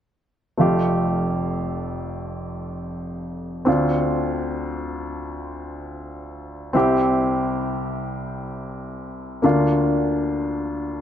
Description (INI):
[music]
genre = pop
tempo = free time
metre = none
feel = none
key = F major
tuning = A4 = 438 Hz
[part]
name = clear baby grand piano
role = accompaniment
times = 0.6-11.0 s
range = F1 to G4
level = -21 LUFS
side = equal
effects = none
[sound]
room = moderate plate reverb, RT60 3.6 s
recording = none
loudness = -21 LUFS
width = side -9 dB against mid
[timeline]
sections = 0.6-11.0 A section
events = none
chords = 0.6 Fadd9; 3.7 Dm7; 6.7 C; 9.4 Bb/D